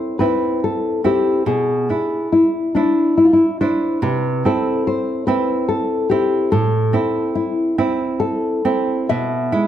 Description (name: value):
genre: romantic duo for nylon-string guitar and classical guitar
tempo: 71 BPM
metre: 3/4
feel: rubato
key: A minor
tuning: A4 = 440 Hz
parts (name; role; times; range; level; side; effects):
- nylon-string guitar; melody; 0.0-9.7 s; D4 to E5; -18 LUFS; left 3 dB; none
- nylon-string guitar; accompaniment; 0.0-9.7 s; A2 to E4; -20 LUFS; right 4 dB; none
room: moderate recital hall reverb, RT60 1.7 s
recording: none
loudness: -16 LUFS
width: side -10 dB against mid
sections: 0.0-9.7 A section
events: none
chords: 0.0 Am; 1.5 E7/B; 4.0 Cmaj7; 6.5 Am; 9.1 E/B